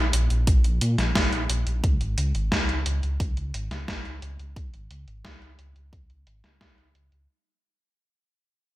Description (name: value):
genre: synthwave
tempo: 88 BPM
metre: 4/4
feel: straight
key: unclear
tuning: A4 = 439 Hz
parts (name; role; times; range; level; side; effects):
- dark detuned saw bass; bass; 0.0-7.3 s; Ab1 to Bb2; -26 LUFS; equal; sidechain pumping
- gated 80s digital drum machine; drums; 0.1-7.3 s; hi-hat, snare drum; -28 LUFS; equal; gated reverb, gated reverb snare, low-pass filter on hats, low-pass filter on perc, low-pass filter on cymbals, low-pass filter on snare, low-pass filter on room
- electronic kick drum; drums; 0.5-6.7 s; none; -25 LUFS; equal; none
room: light reverb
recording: bright 1980s-style digital production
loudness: -22 LUFS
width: side -16 dB against mid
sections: 0.0-7.3 A section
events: fade-out 0.0-7.3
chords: none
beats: 0.47 1.15 | 1.84 2.52 3.20 3.88 | 4.56 5.25 5.93 6.61